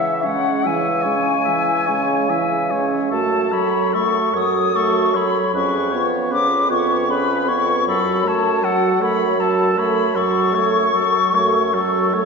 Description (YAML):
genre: classical, slow romantic movement for wind quintet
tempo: 48-54 BPM (dotted quarters)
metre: 12/8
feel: rubato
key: unclear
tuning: A4 = 442 Hz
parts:
  - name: silver concert flute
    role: melody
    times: 0.0-12.3 s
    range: E5 to D#6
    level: -20 LUFS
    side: left 4 dB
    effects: none
  - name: warm oboe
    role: second line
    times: 0.0-12.3 s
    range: A4 to E5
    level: -23 LUFS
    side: left 2 dB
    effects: none
  - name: clear French horn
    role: accompaniment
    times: 0.0-12.3 s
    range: E3 to C#4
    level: -24 LUFS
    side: right 1 dB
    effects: none
  - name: mellow clarinet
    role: accompaniment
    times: 0.0-12.3 s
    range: C#4 to A4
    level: -24 LUFS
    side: right 7 dB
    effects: none
  - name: mellow bassoon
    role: bass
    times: 0.0-12.3 s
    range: E#2 to C#3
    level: -23 LUFS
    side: right 2 dB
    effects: none
room: wet concert hall reverb, RT60 1.9 s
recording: recorded in a church or concert hall, nothing above 7.5 kHz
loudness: -16 LUFS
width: side -4 dB against mid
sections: 0.0-12.3 A section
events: none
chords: 0.0 C#m; 3.1 F#m; 5.5 C#7/E#; 7.9 F#m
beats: 0.66 1.88 | 3.11 4.34 5.54 6.71 | 7.89 9.03 10.16 11.35